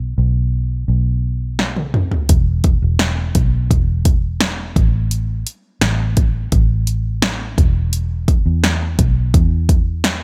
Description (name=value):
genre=piano-driven pop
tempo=85 BPM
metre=4/4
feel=straight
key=unclear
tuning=A4 = 439 Hz
part: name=vintage muted fingered electric bass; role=bass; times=0.0-10.2 s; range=E1 to E2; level=-20 LUFS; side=equal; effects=none
part: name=deep house drum kit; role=drums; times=1.6-10.2 s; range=hi-hat, kick drum, snare drum, toms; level=-18 LUFS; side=equal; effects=none
room=little or no reverb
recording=none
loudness=-17 LUFS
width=mono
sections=0.0-10.2 A section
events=drum fill 1.6-2.3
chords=none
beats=0.17 0.88 1.59 | 2.29 3.00 3.70 4.41 | 5.11 5.82 6.52 7.23 | 7.93 8.64 9.34 10.05